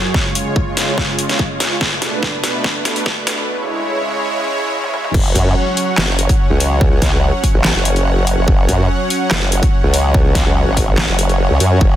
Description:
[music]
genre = heavy wobble dubstep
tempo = 144 BPM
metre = 4/4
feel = half-time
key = F# minor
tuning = A4 = 440 Hz
[part]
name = supersaw pad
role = sustained chords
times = 0.0-12.0 s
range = F#2 to B5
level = -20 LUFS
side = right 1 dB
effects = sidechain pumping
[part]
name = dubstep drum kit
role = drums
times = 0.1-11.7 s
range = crash cymbal, handclaps, hi-hat, snare drum, toms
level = -19 LUFS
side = equal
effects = overdrive, high-pass filter on hats, small room ambience, high-pass filter on snare, high-pass filter on toms, high-pass filter on cymbals
[part]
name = electronic kick drum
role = drums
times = 0.1-11.9 s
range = none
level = -16 LUFS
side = equal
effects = small room ambience
[part]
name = formant-sweep wobble bass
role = bass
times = 5.1-12.0 s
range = F#1 to F#2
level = -15 LUFS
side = equal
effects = chorus, overdrive
[sound]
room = light reverb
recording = dense, heavily limited modern master, high-pass filter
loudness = -13 LUFS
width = side -12 dB against mid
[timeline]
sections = 0.0-5.1 A section; 5.1-12.0 B section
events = build-up 0.0-5.1; drum fill 0.0-3.5, 4.8-5.1; drop 5.1-12.0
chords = 0.1 C#; 1.8 Bm7; 3.5 C#m; 5.1 F#5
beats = | 0.14 0.56 0.98 1.39 | 1.81 2.23 2.64 3.06 | 3.48 3.89 4.31 4.73 | 5.14 5.56 5.98 6.39 | 6.81 7.23 7.64 8.06 | 8.48 8.89 9.31 9.73 | 10.14 10.56 10.98 11.39 | 11.81

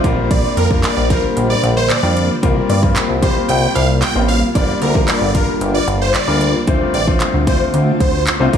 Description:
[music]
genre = dance-pop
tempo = 113 BPM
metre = 4/4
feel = straight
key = unclear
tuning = A4 = 440 Hz
[part]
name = clear concert grand piano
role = accompaniment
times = 0.0-8.6 s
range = G3 to C5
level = -20 LUFS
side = left 5 dB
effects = sidechain pumping, dub echo
[part]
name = granular cloud pad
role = sustained chords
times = 0.0-8.6 s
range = C3 to F4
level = -24 LUFS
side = equal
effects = built-in reverb, sidechain pumping
[part]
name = chorused synth bass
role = bass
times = 0.0-8.6 s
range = G1 to G2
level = -17 LUFS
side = equal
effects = sidechain pumping
[part]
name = house drum kit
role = drums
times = 0.0-8.6 s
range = handclaps, hi-hat, kick drum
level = -18 LUFS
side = equal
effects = none
[part]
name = supersaw chords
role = melody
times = 0.3-8.2 s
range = Bb4 to G5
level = -20 LUFS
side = right 1 dB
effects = phaser, sidechain pumping, dub echo
[part]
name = group handclap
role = percussion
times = 0.8-6.3 s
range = none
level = -30 LUFS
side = right 8 dB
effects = none
[sound]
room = light reverb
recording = echo-heavy mix, studio ambience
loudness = -13 LUFS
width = side -8 dB against mid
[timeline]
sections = 0.0-8.6 A section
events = kick muted 3.5-4.6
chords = 0.0 Bb6; 2.4 C7sus4; 4.6 Gm7; 6.7 Dm7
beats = | 0.30 0.84 1.37 1.90 | 2.43 2.96 3.49 4.02 | 4.55 5.08 5.62 6.15 | 6.68 7.21 7.74 8.27

